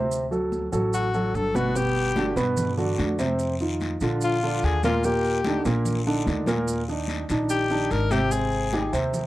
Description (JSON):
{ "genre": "Afro-Cuban jazz", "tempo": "146 BPM", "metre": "4/4", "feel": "straight", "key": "Eb major", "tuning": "A4 = 440 Hz", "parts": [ { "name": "dark concert grand piano", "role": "accompaniment", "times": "0.0-9.3 s", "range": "Bb2 to C5", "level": "-25 LUFS", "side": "right 1 dB", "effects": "none" }, { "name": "upright bass", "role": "bass", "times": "0.0-9.3 s", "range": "G1 to G2", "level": "-29 LUFS", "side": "equal", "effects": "none" }, { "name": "congas", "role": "percussion", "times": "0.1-9.3 s", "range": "none", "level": "-33 LUFS", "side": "equal", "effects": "none" }, { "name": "maracas", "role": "percussion", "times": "0.1-9.3 s", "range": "none", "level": "-40 LUFS", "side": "right 5 dB", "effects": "none" }, { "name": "clear tenor saxophone", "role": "second line", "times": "0.9-8.9 s", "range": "F4 to Bb4", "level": "-26 LUFS", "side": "left 4 dB", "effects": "none" }, { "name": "guiro", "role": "percussion", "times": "1.8-9.3 s", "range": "none", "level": "-38 LUFS", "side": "left 5 dB", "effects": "none" } ], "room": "small room ambience", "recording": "dry, close 1970s-style studio recording", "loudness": "-22 LUFS", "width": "side -16 dB against mid", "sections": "0.0-8.3 A section", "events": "tenor saxophone solo 0.0-9.3", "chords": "0.1 D7; 1.8 Gmaj7; 3.4 F5; 4.2 Bb; 5.0 Ebmaj7; 8.3 Abmaj7" }